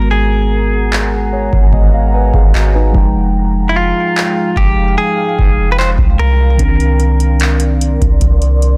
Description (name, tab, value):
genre	contemporary R&B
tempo	74 BPM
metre	4/4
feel	straight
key	unclear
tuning	A4 = 440 Hz
part	direct-recorded clean electric guitar	melody	0.0-8.6 s	E4 to C5	-20 LUFS	equal	delay
part	muted felt-like synth keys	accompaniment	0.0-8.8 s	Eb3 to Bb5	-21 LUFS	equal	chorus
part	deep dark ambient pad	sustained chords	0.3-8.8 s	Ab3 to C6	-27 LUFS	equal	chorus, built-in reverb, sidechain pumping
part	soft 808-style bass	bass	0.0-8.8 s	F1 to C2	-16 LUFS	equal	none
part	booming analog drum machine	drums	0.9-8.8 s	handclaps, hi-hat, kick drum	-15 LUFS	equal	overdrive
room	little or no reverb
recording	dense, heavily limited modern master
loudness	-13 LUFS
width	mono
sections	0.0-8.8 A section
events	synth keys fill 0.9-3.4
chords	0.0 Abm9; 2.9 Fm9; 6.6 Cm9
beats	| 0.11 0.92 1.73 2.54 | 3.35 4.16 4.97 5.78 | 6.59 7.41 8.22